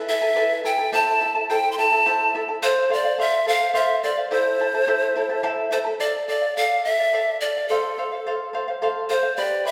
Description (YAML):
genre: andean folk, Andean ensemble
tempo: 71 BPM (dotted quarters)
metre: 6/8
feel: straight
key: unclear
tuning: A4 = 441 Hz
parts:
  - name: charango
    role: accompaniment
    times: 0.0-9.7 s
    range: E4 to B5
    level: -27 LUFS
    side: equal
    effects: none
  - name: breathy bright pan flute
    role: melody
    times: 0.1-9.7 s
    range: A4 to C6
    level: -23 LUFS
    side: equal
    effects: none
room: wet recital hall reverb, RT60 1.5 s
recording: recorded in a church or concert hall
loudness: -22 LUFS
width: mono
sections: 0.0-6.0 A section; 6.0-9.7 B section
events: none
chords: 0.0 E; 0.9 Am; 2.6 F/A; 4.3 Am; 6.0 Dm; 7.7 F